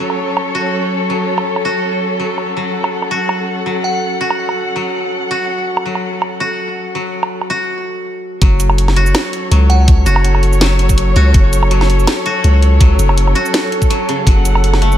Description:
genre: half-time drum and bass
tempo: 164 BPM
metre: 4/4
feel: swing 54% on 16ths, half-time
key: F# minor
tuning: A4 = 440 Hz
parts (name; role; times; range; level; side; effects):
- rich chamber cello section; sustained chords; 0.0-15.0 s; F#3 to F#5; -21 LUFS; left 1 dB; vintage 12-bit sampler grit, sidechain pumping
- koto; arpeggios; 0.0-15.0 s; C#3 to F#4; -20 LUFS; equal; tape echo
- metallic inharmonic drone; texture; 0.0-15.0 s; A4; -24 LUFS; equal; chorus, built-in reverb
- drum and bass drum kit; drums; 0.1-15.0 s; hi-hat, shaker, snare drum, woodblock; -19 LUFS; right 2 dB; small room reverb
- glassy synth bell; melody; 3.8-4.1, 9.7-10.0 s; F#5; -23 LUFS; right 1 dB; chorus, tremolo, vintage 12-bit sampler grit, digital delay
- long sustained 808-style bass; bass; 8.4-15.0 s; F#1 to C#2; -11 LUFS; equal; none
- electronic kick drum; drums; 8.4-14.3 s; none; -10 LUFS; equal; small room reverb
room: light reverb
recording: none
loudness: -12 LUFS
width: side -11 dB against mid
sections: 0.0-8.4 A section; 8.4-15.0 B section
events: break 7.7-8.4; drop 8.4-15.0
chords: 0.0 F#m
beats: 0.00 0.37 0.73 | 1.10 1.46 1.83 2.20 | 2.56 2.93 3.29 3.66 | 4.03 4.39 4.76 5.12 | 5.49 5.85 6.22 6.59 | 6.95 7.32 7.68 8.05 | 8.41 8.78 9.15 9.51 | 9.88 10.24 10.61 10.98 | 11.34 11.71 12.07 12.44 | 12.81 13.17 13.54 13.90 | 14.27 14.63

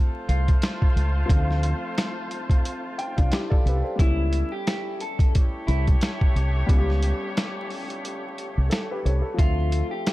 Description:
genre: hip hop, boom-bap hip-hop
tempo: 89 BPM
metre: 4/4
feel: swing 59% on 16ths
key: D dorian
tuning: A4 = 441 Hz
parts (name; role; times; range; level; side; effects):
- warm upright piano; accompaniment; 0.0-10.1 s; F3 to G5; -32 LUFS; left 1 dB; cassette tape, high-pass filter, low-pass filter
- clear horn section; stabs; 0.0-9.0 s; A3 to C#5; -34 LUFS; equal; high-pass filter, low-pass filter, tape echo
- electric guitar at the edge of break-up; melody; 0.3-10.1 s; E4 to A4; -33 LUFS; left 1 dB; wide subtle chorus, high-pass filter, low-pass filter, tape echo
- deep dub fingered electric bass; bass; 0.3-9.8 s; C2 to D2; -22 LUFS; equal; none
- boom bap sampler-style drum kit; drums; 0.3-10.1 s; hi-hat, kick drum, snare drum; -22 LUFS; equal; none
room: digital ambience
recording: dark, warm production, vinyl crackle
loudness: -21 LUFS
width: side -18 dB against mid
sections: 0.0-10.1 A section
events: upright piano fill 2.6-4.0; break 8.0-9.4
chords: 0.0 Dm7; 4.0 A7; 9.4 Dm7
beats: 0.62 | 1.29 1.97 2.64 3.32 | 3.99 4.67 5.34 6.01 | 6.69 7.36 8.04 8.71 | 9.38 10.06

